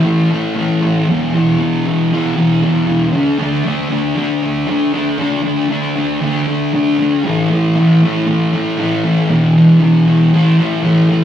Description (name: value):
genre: rock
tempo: 117 BPM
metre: 4/4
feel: straight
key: unclear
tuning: A4 = 438 Hz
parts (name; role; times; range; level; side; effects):
- thick fuzz guitar; solo; 0.0-11.2 s; E2 to D4; -12 LUFS; equal; distortion
room: moderate studio reverb, RT60 0.6 s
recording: rough rehearsal-room recording, warm saturation, studio reverb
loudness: -12 LUFS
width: side -10 dB against mid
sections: 0.0-11.2 A section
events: none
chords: 0.0 A5; 1.1 E5; 3.1 D5; 7.2 A5; 9.3 E5; 10.3 A5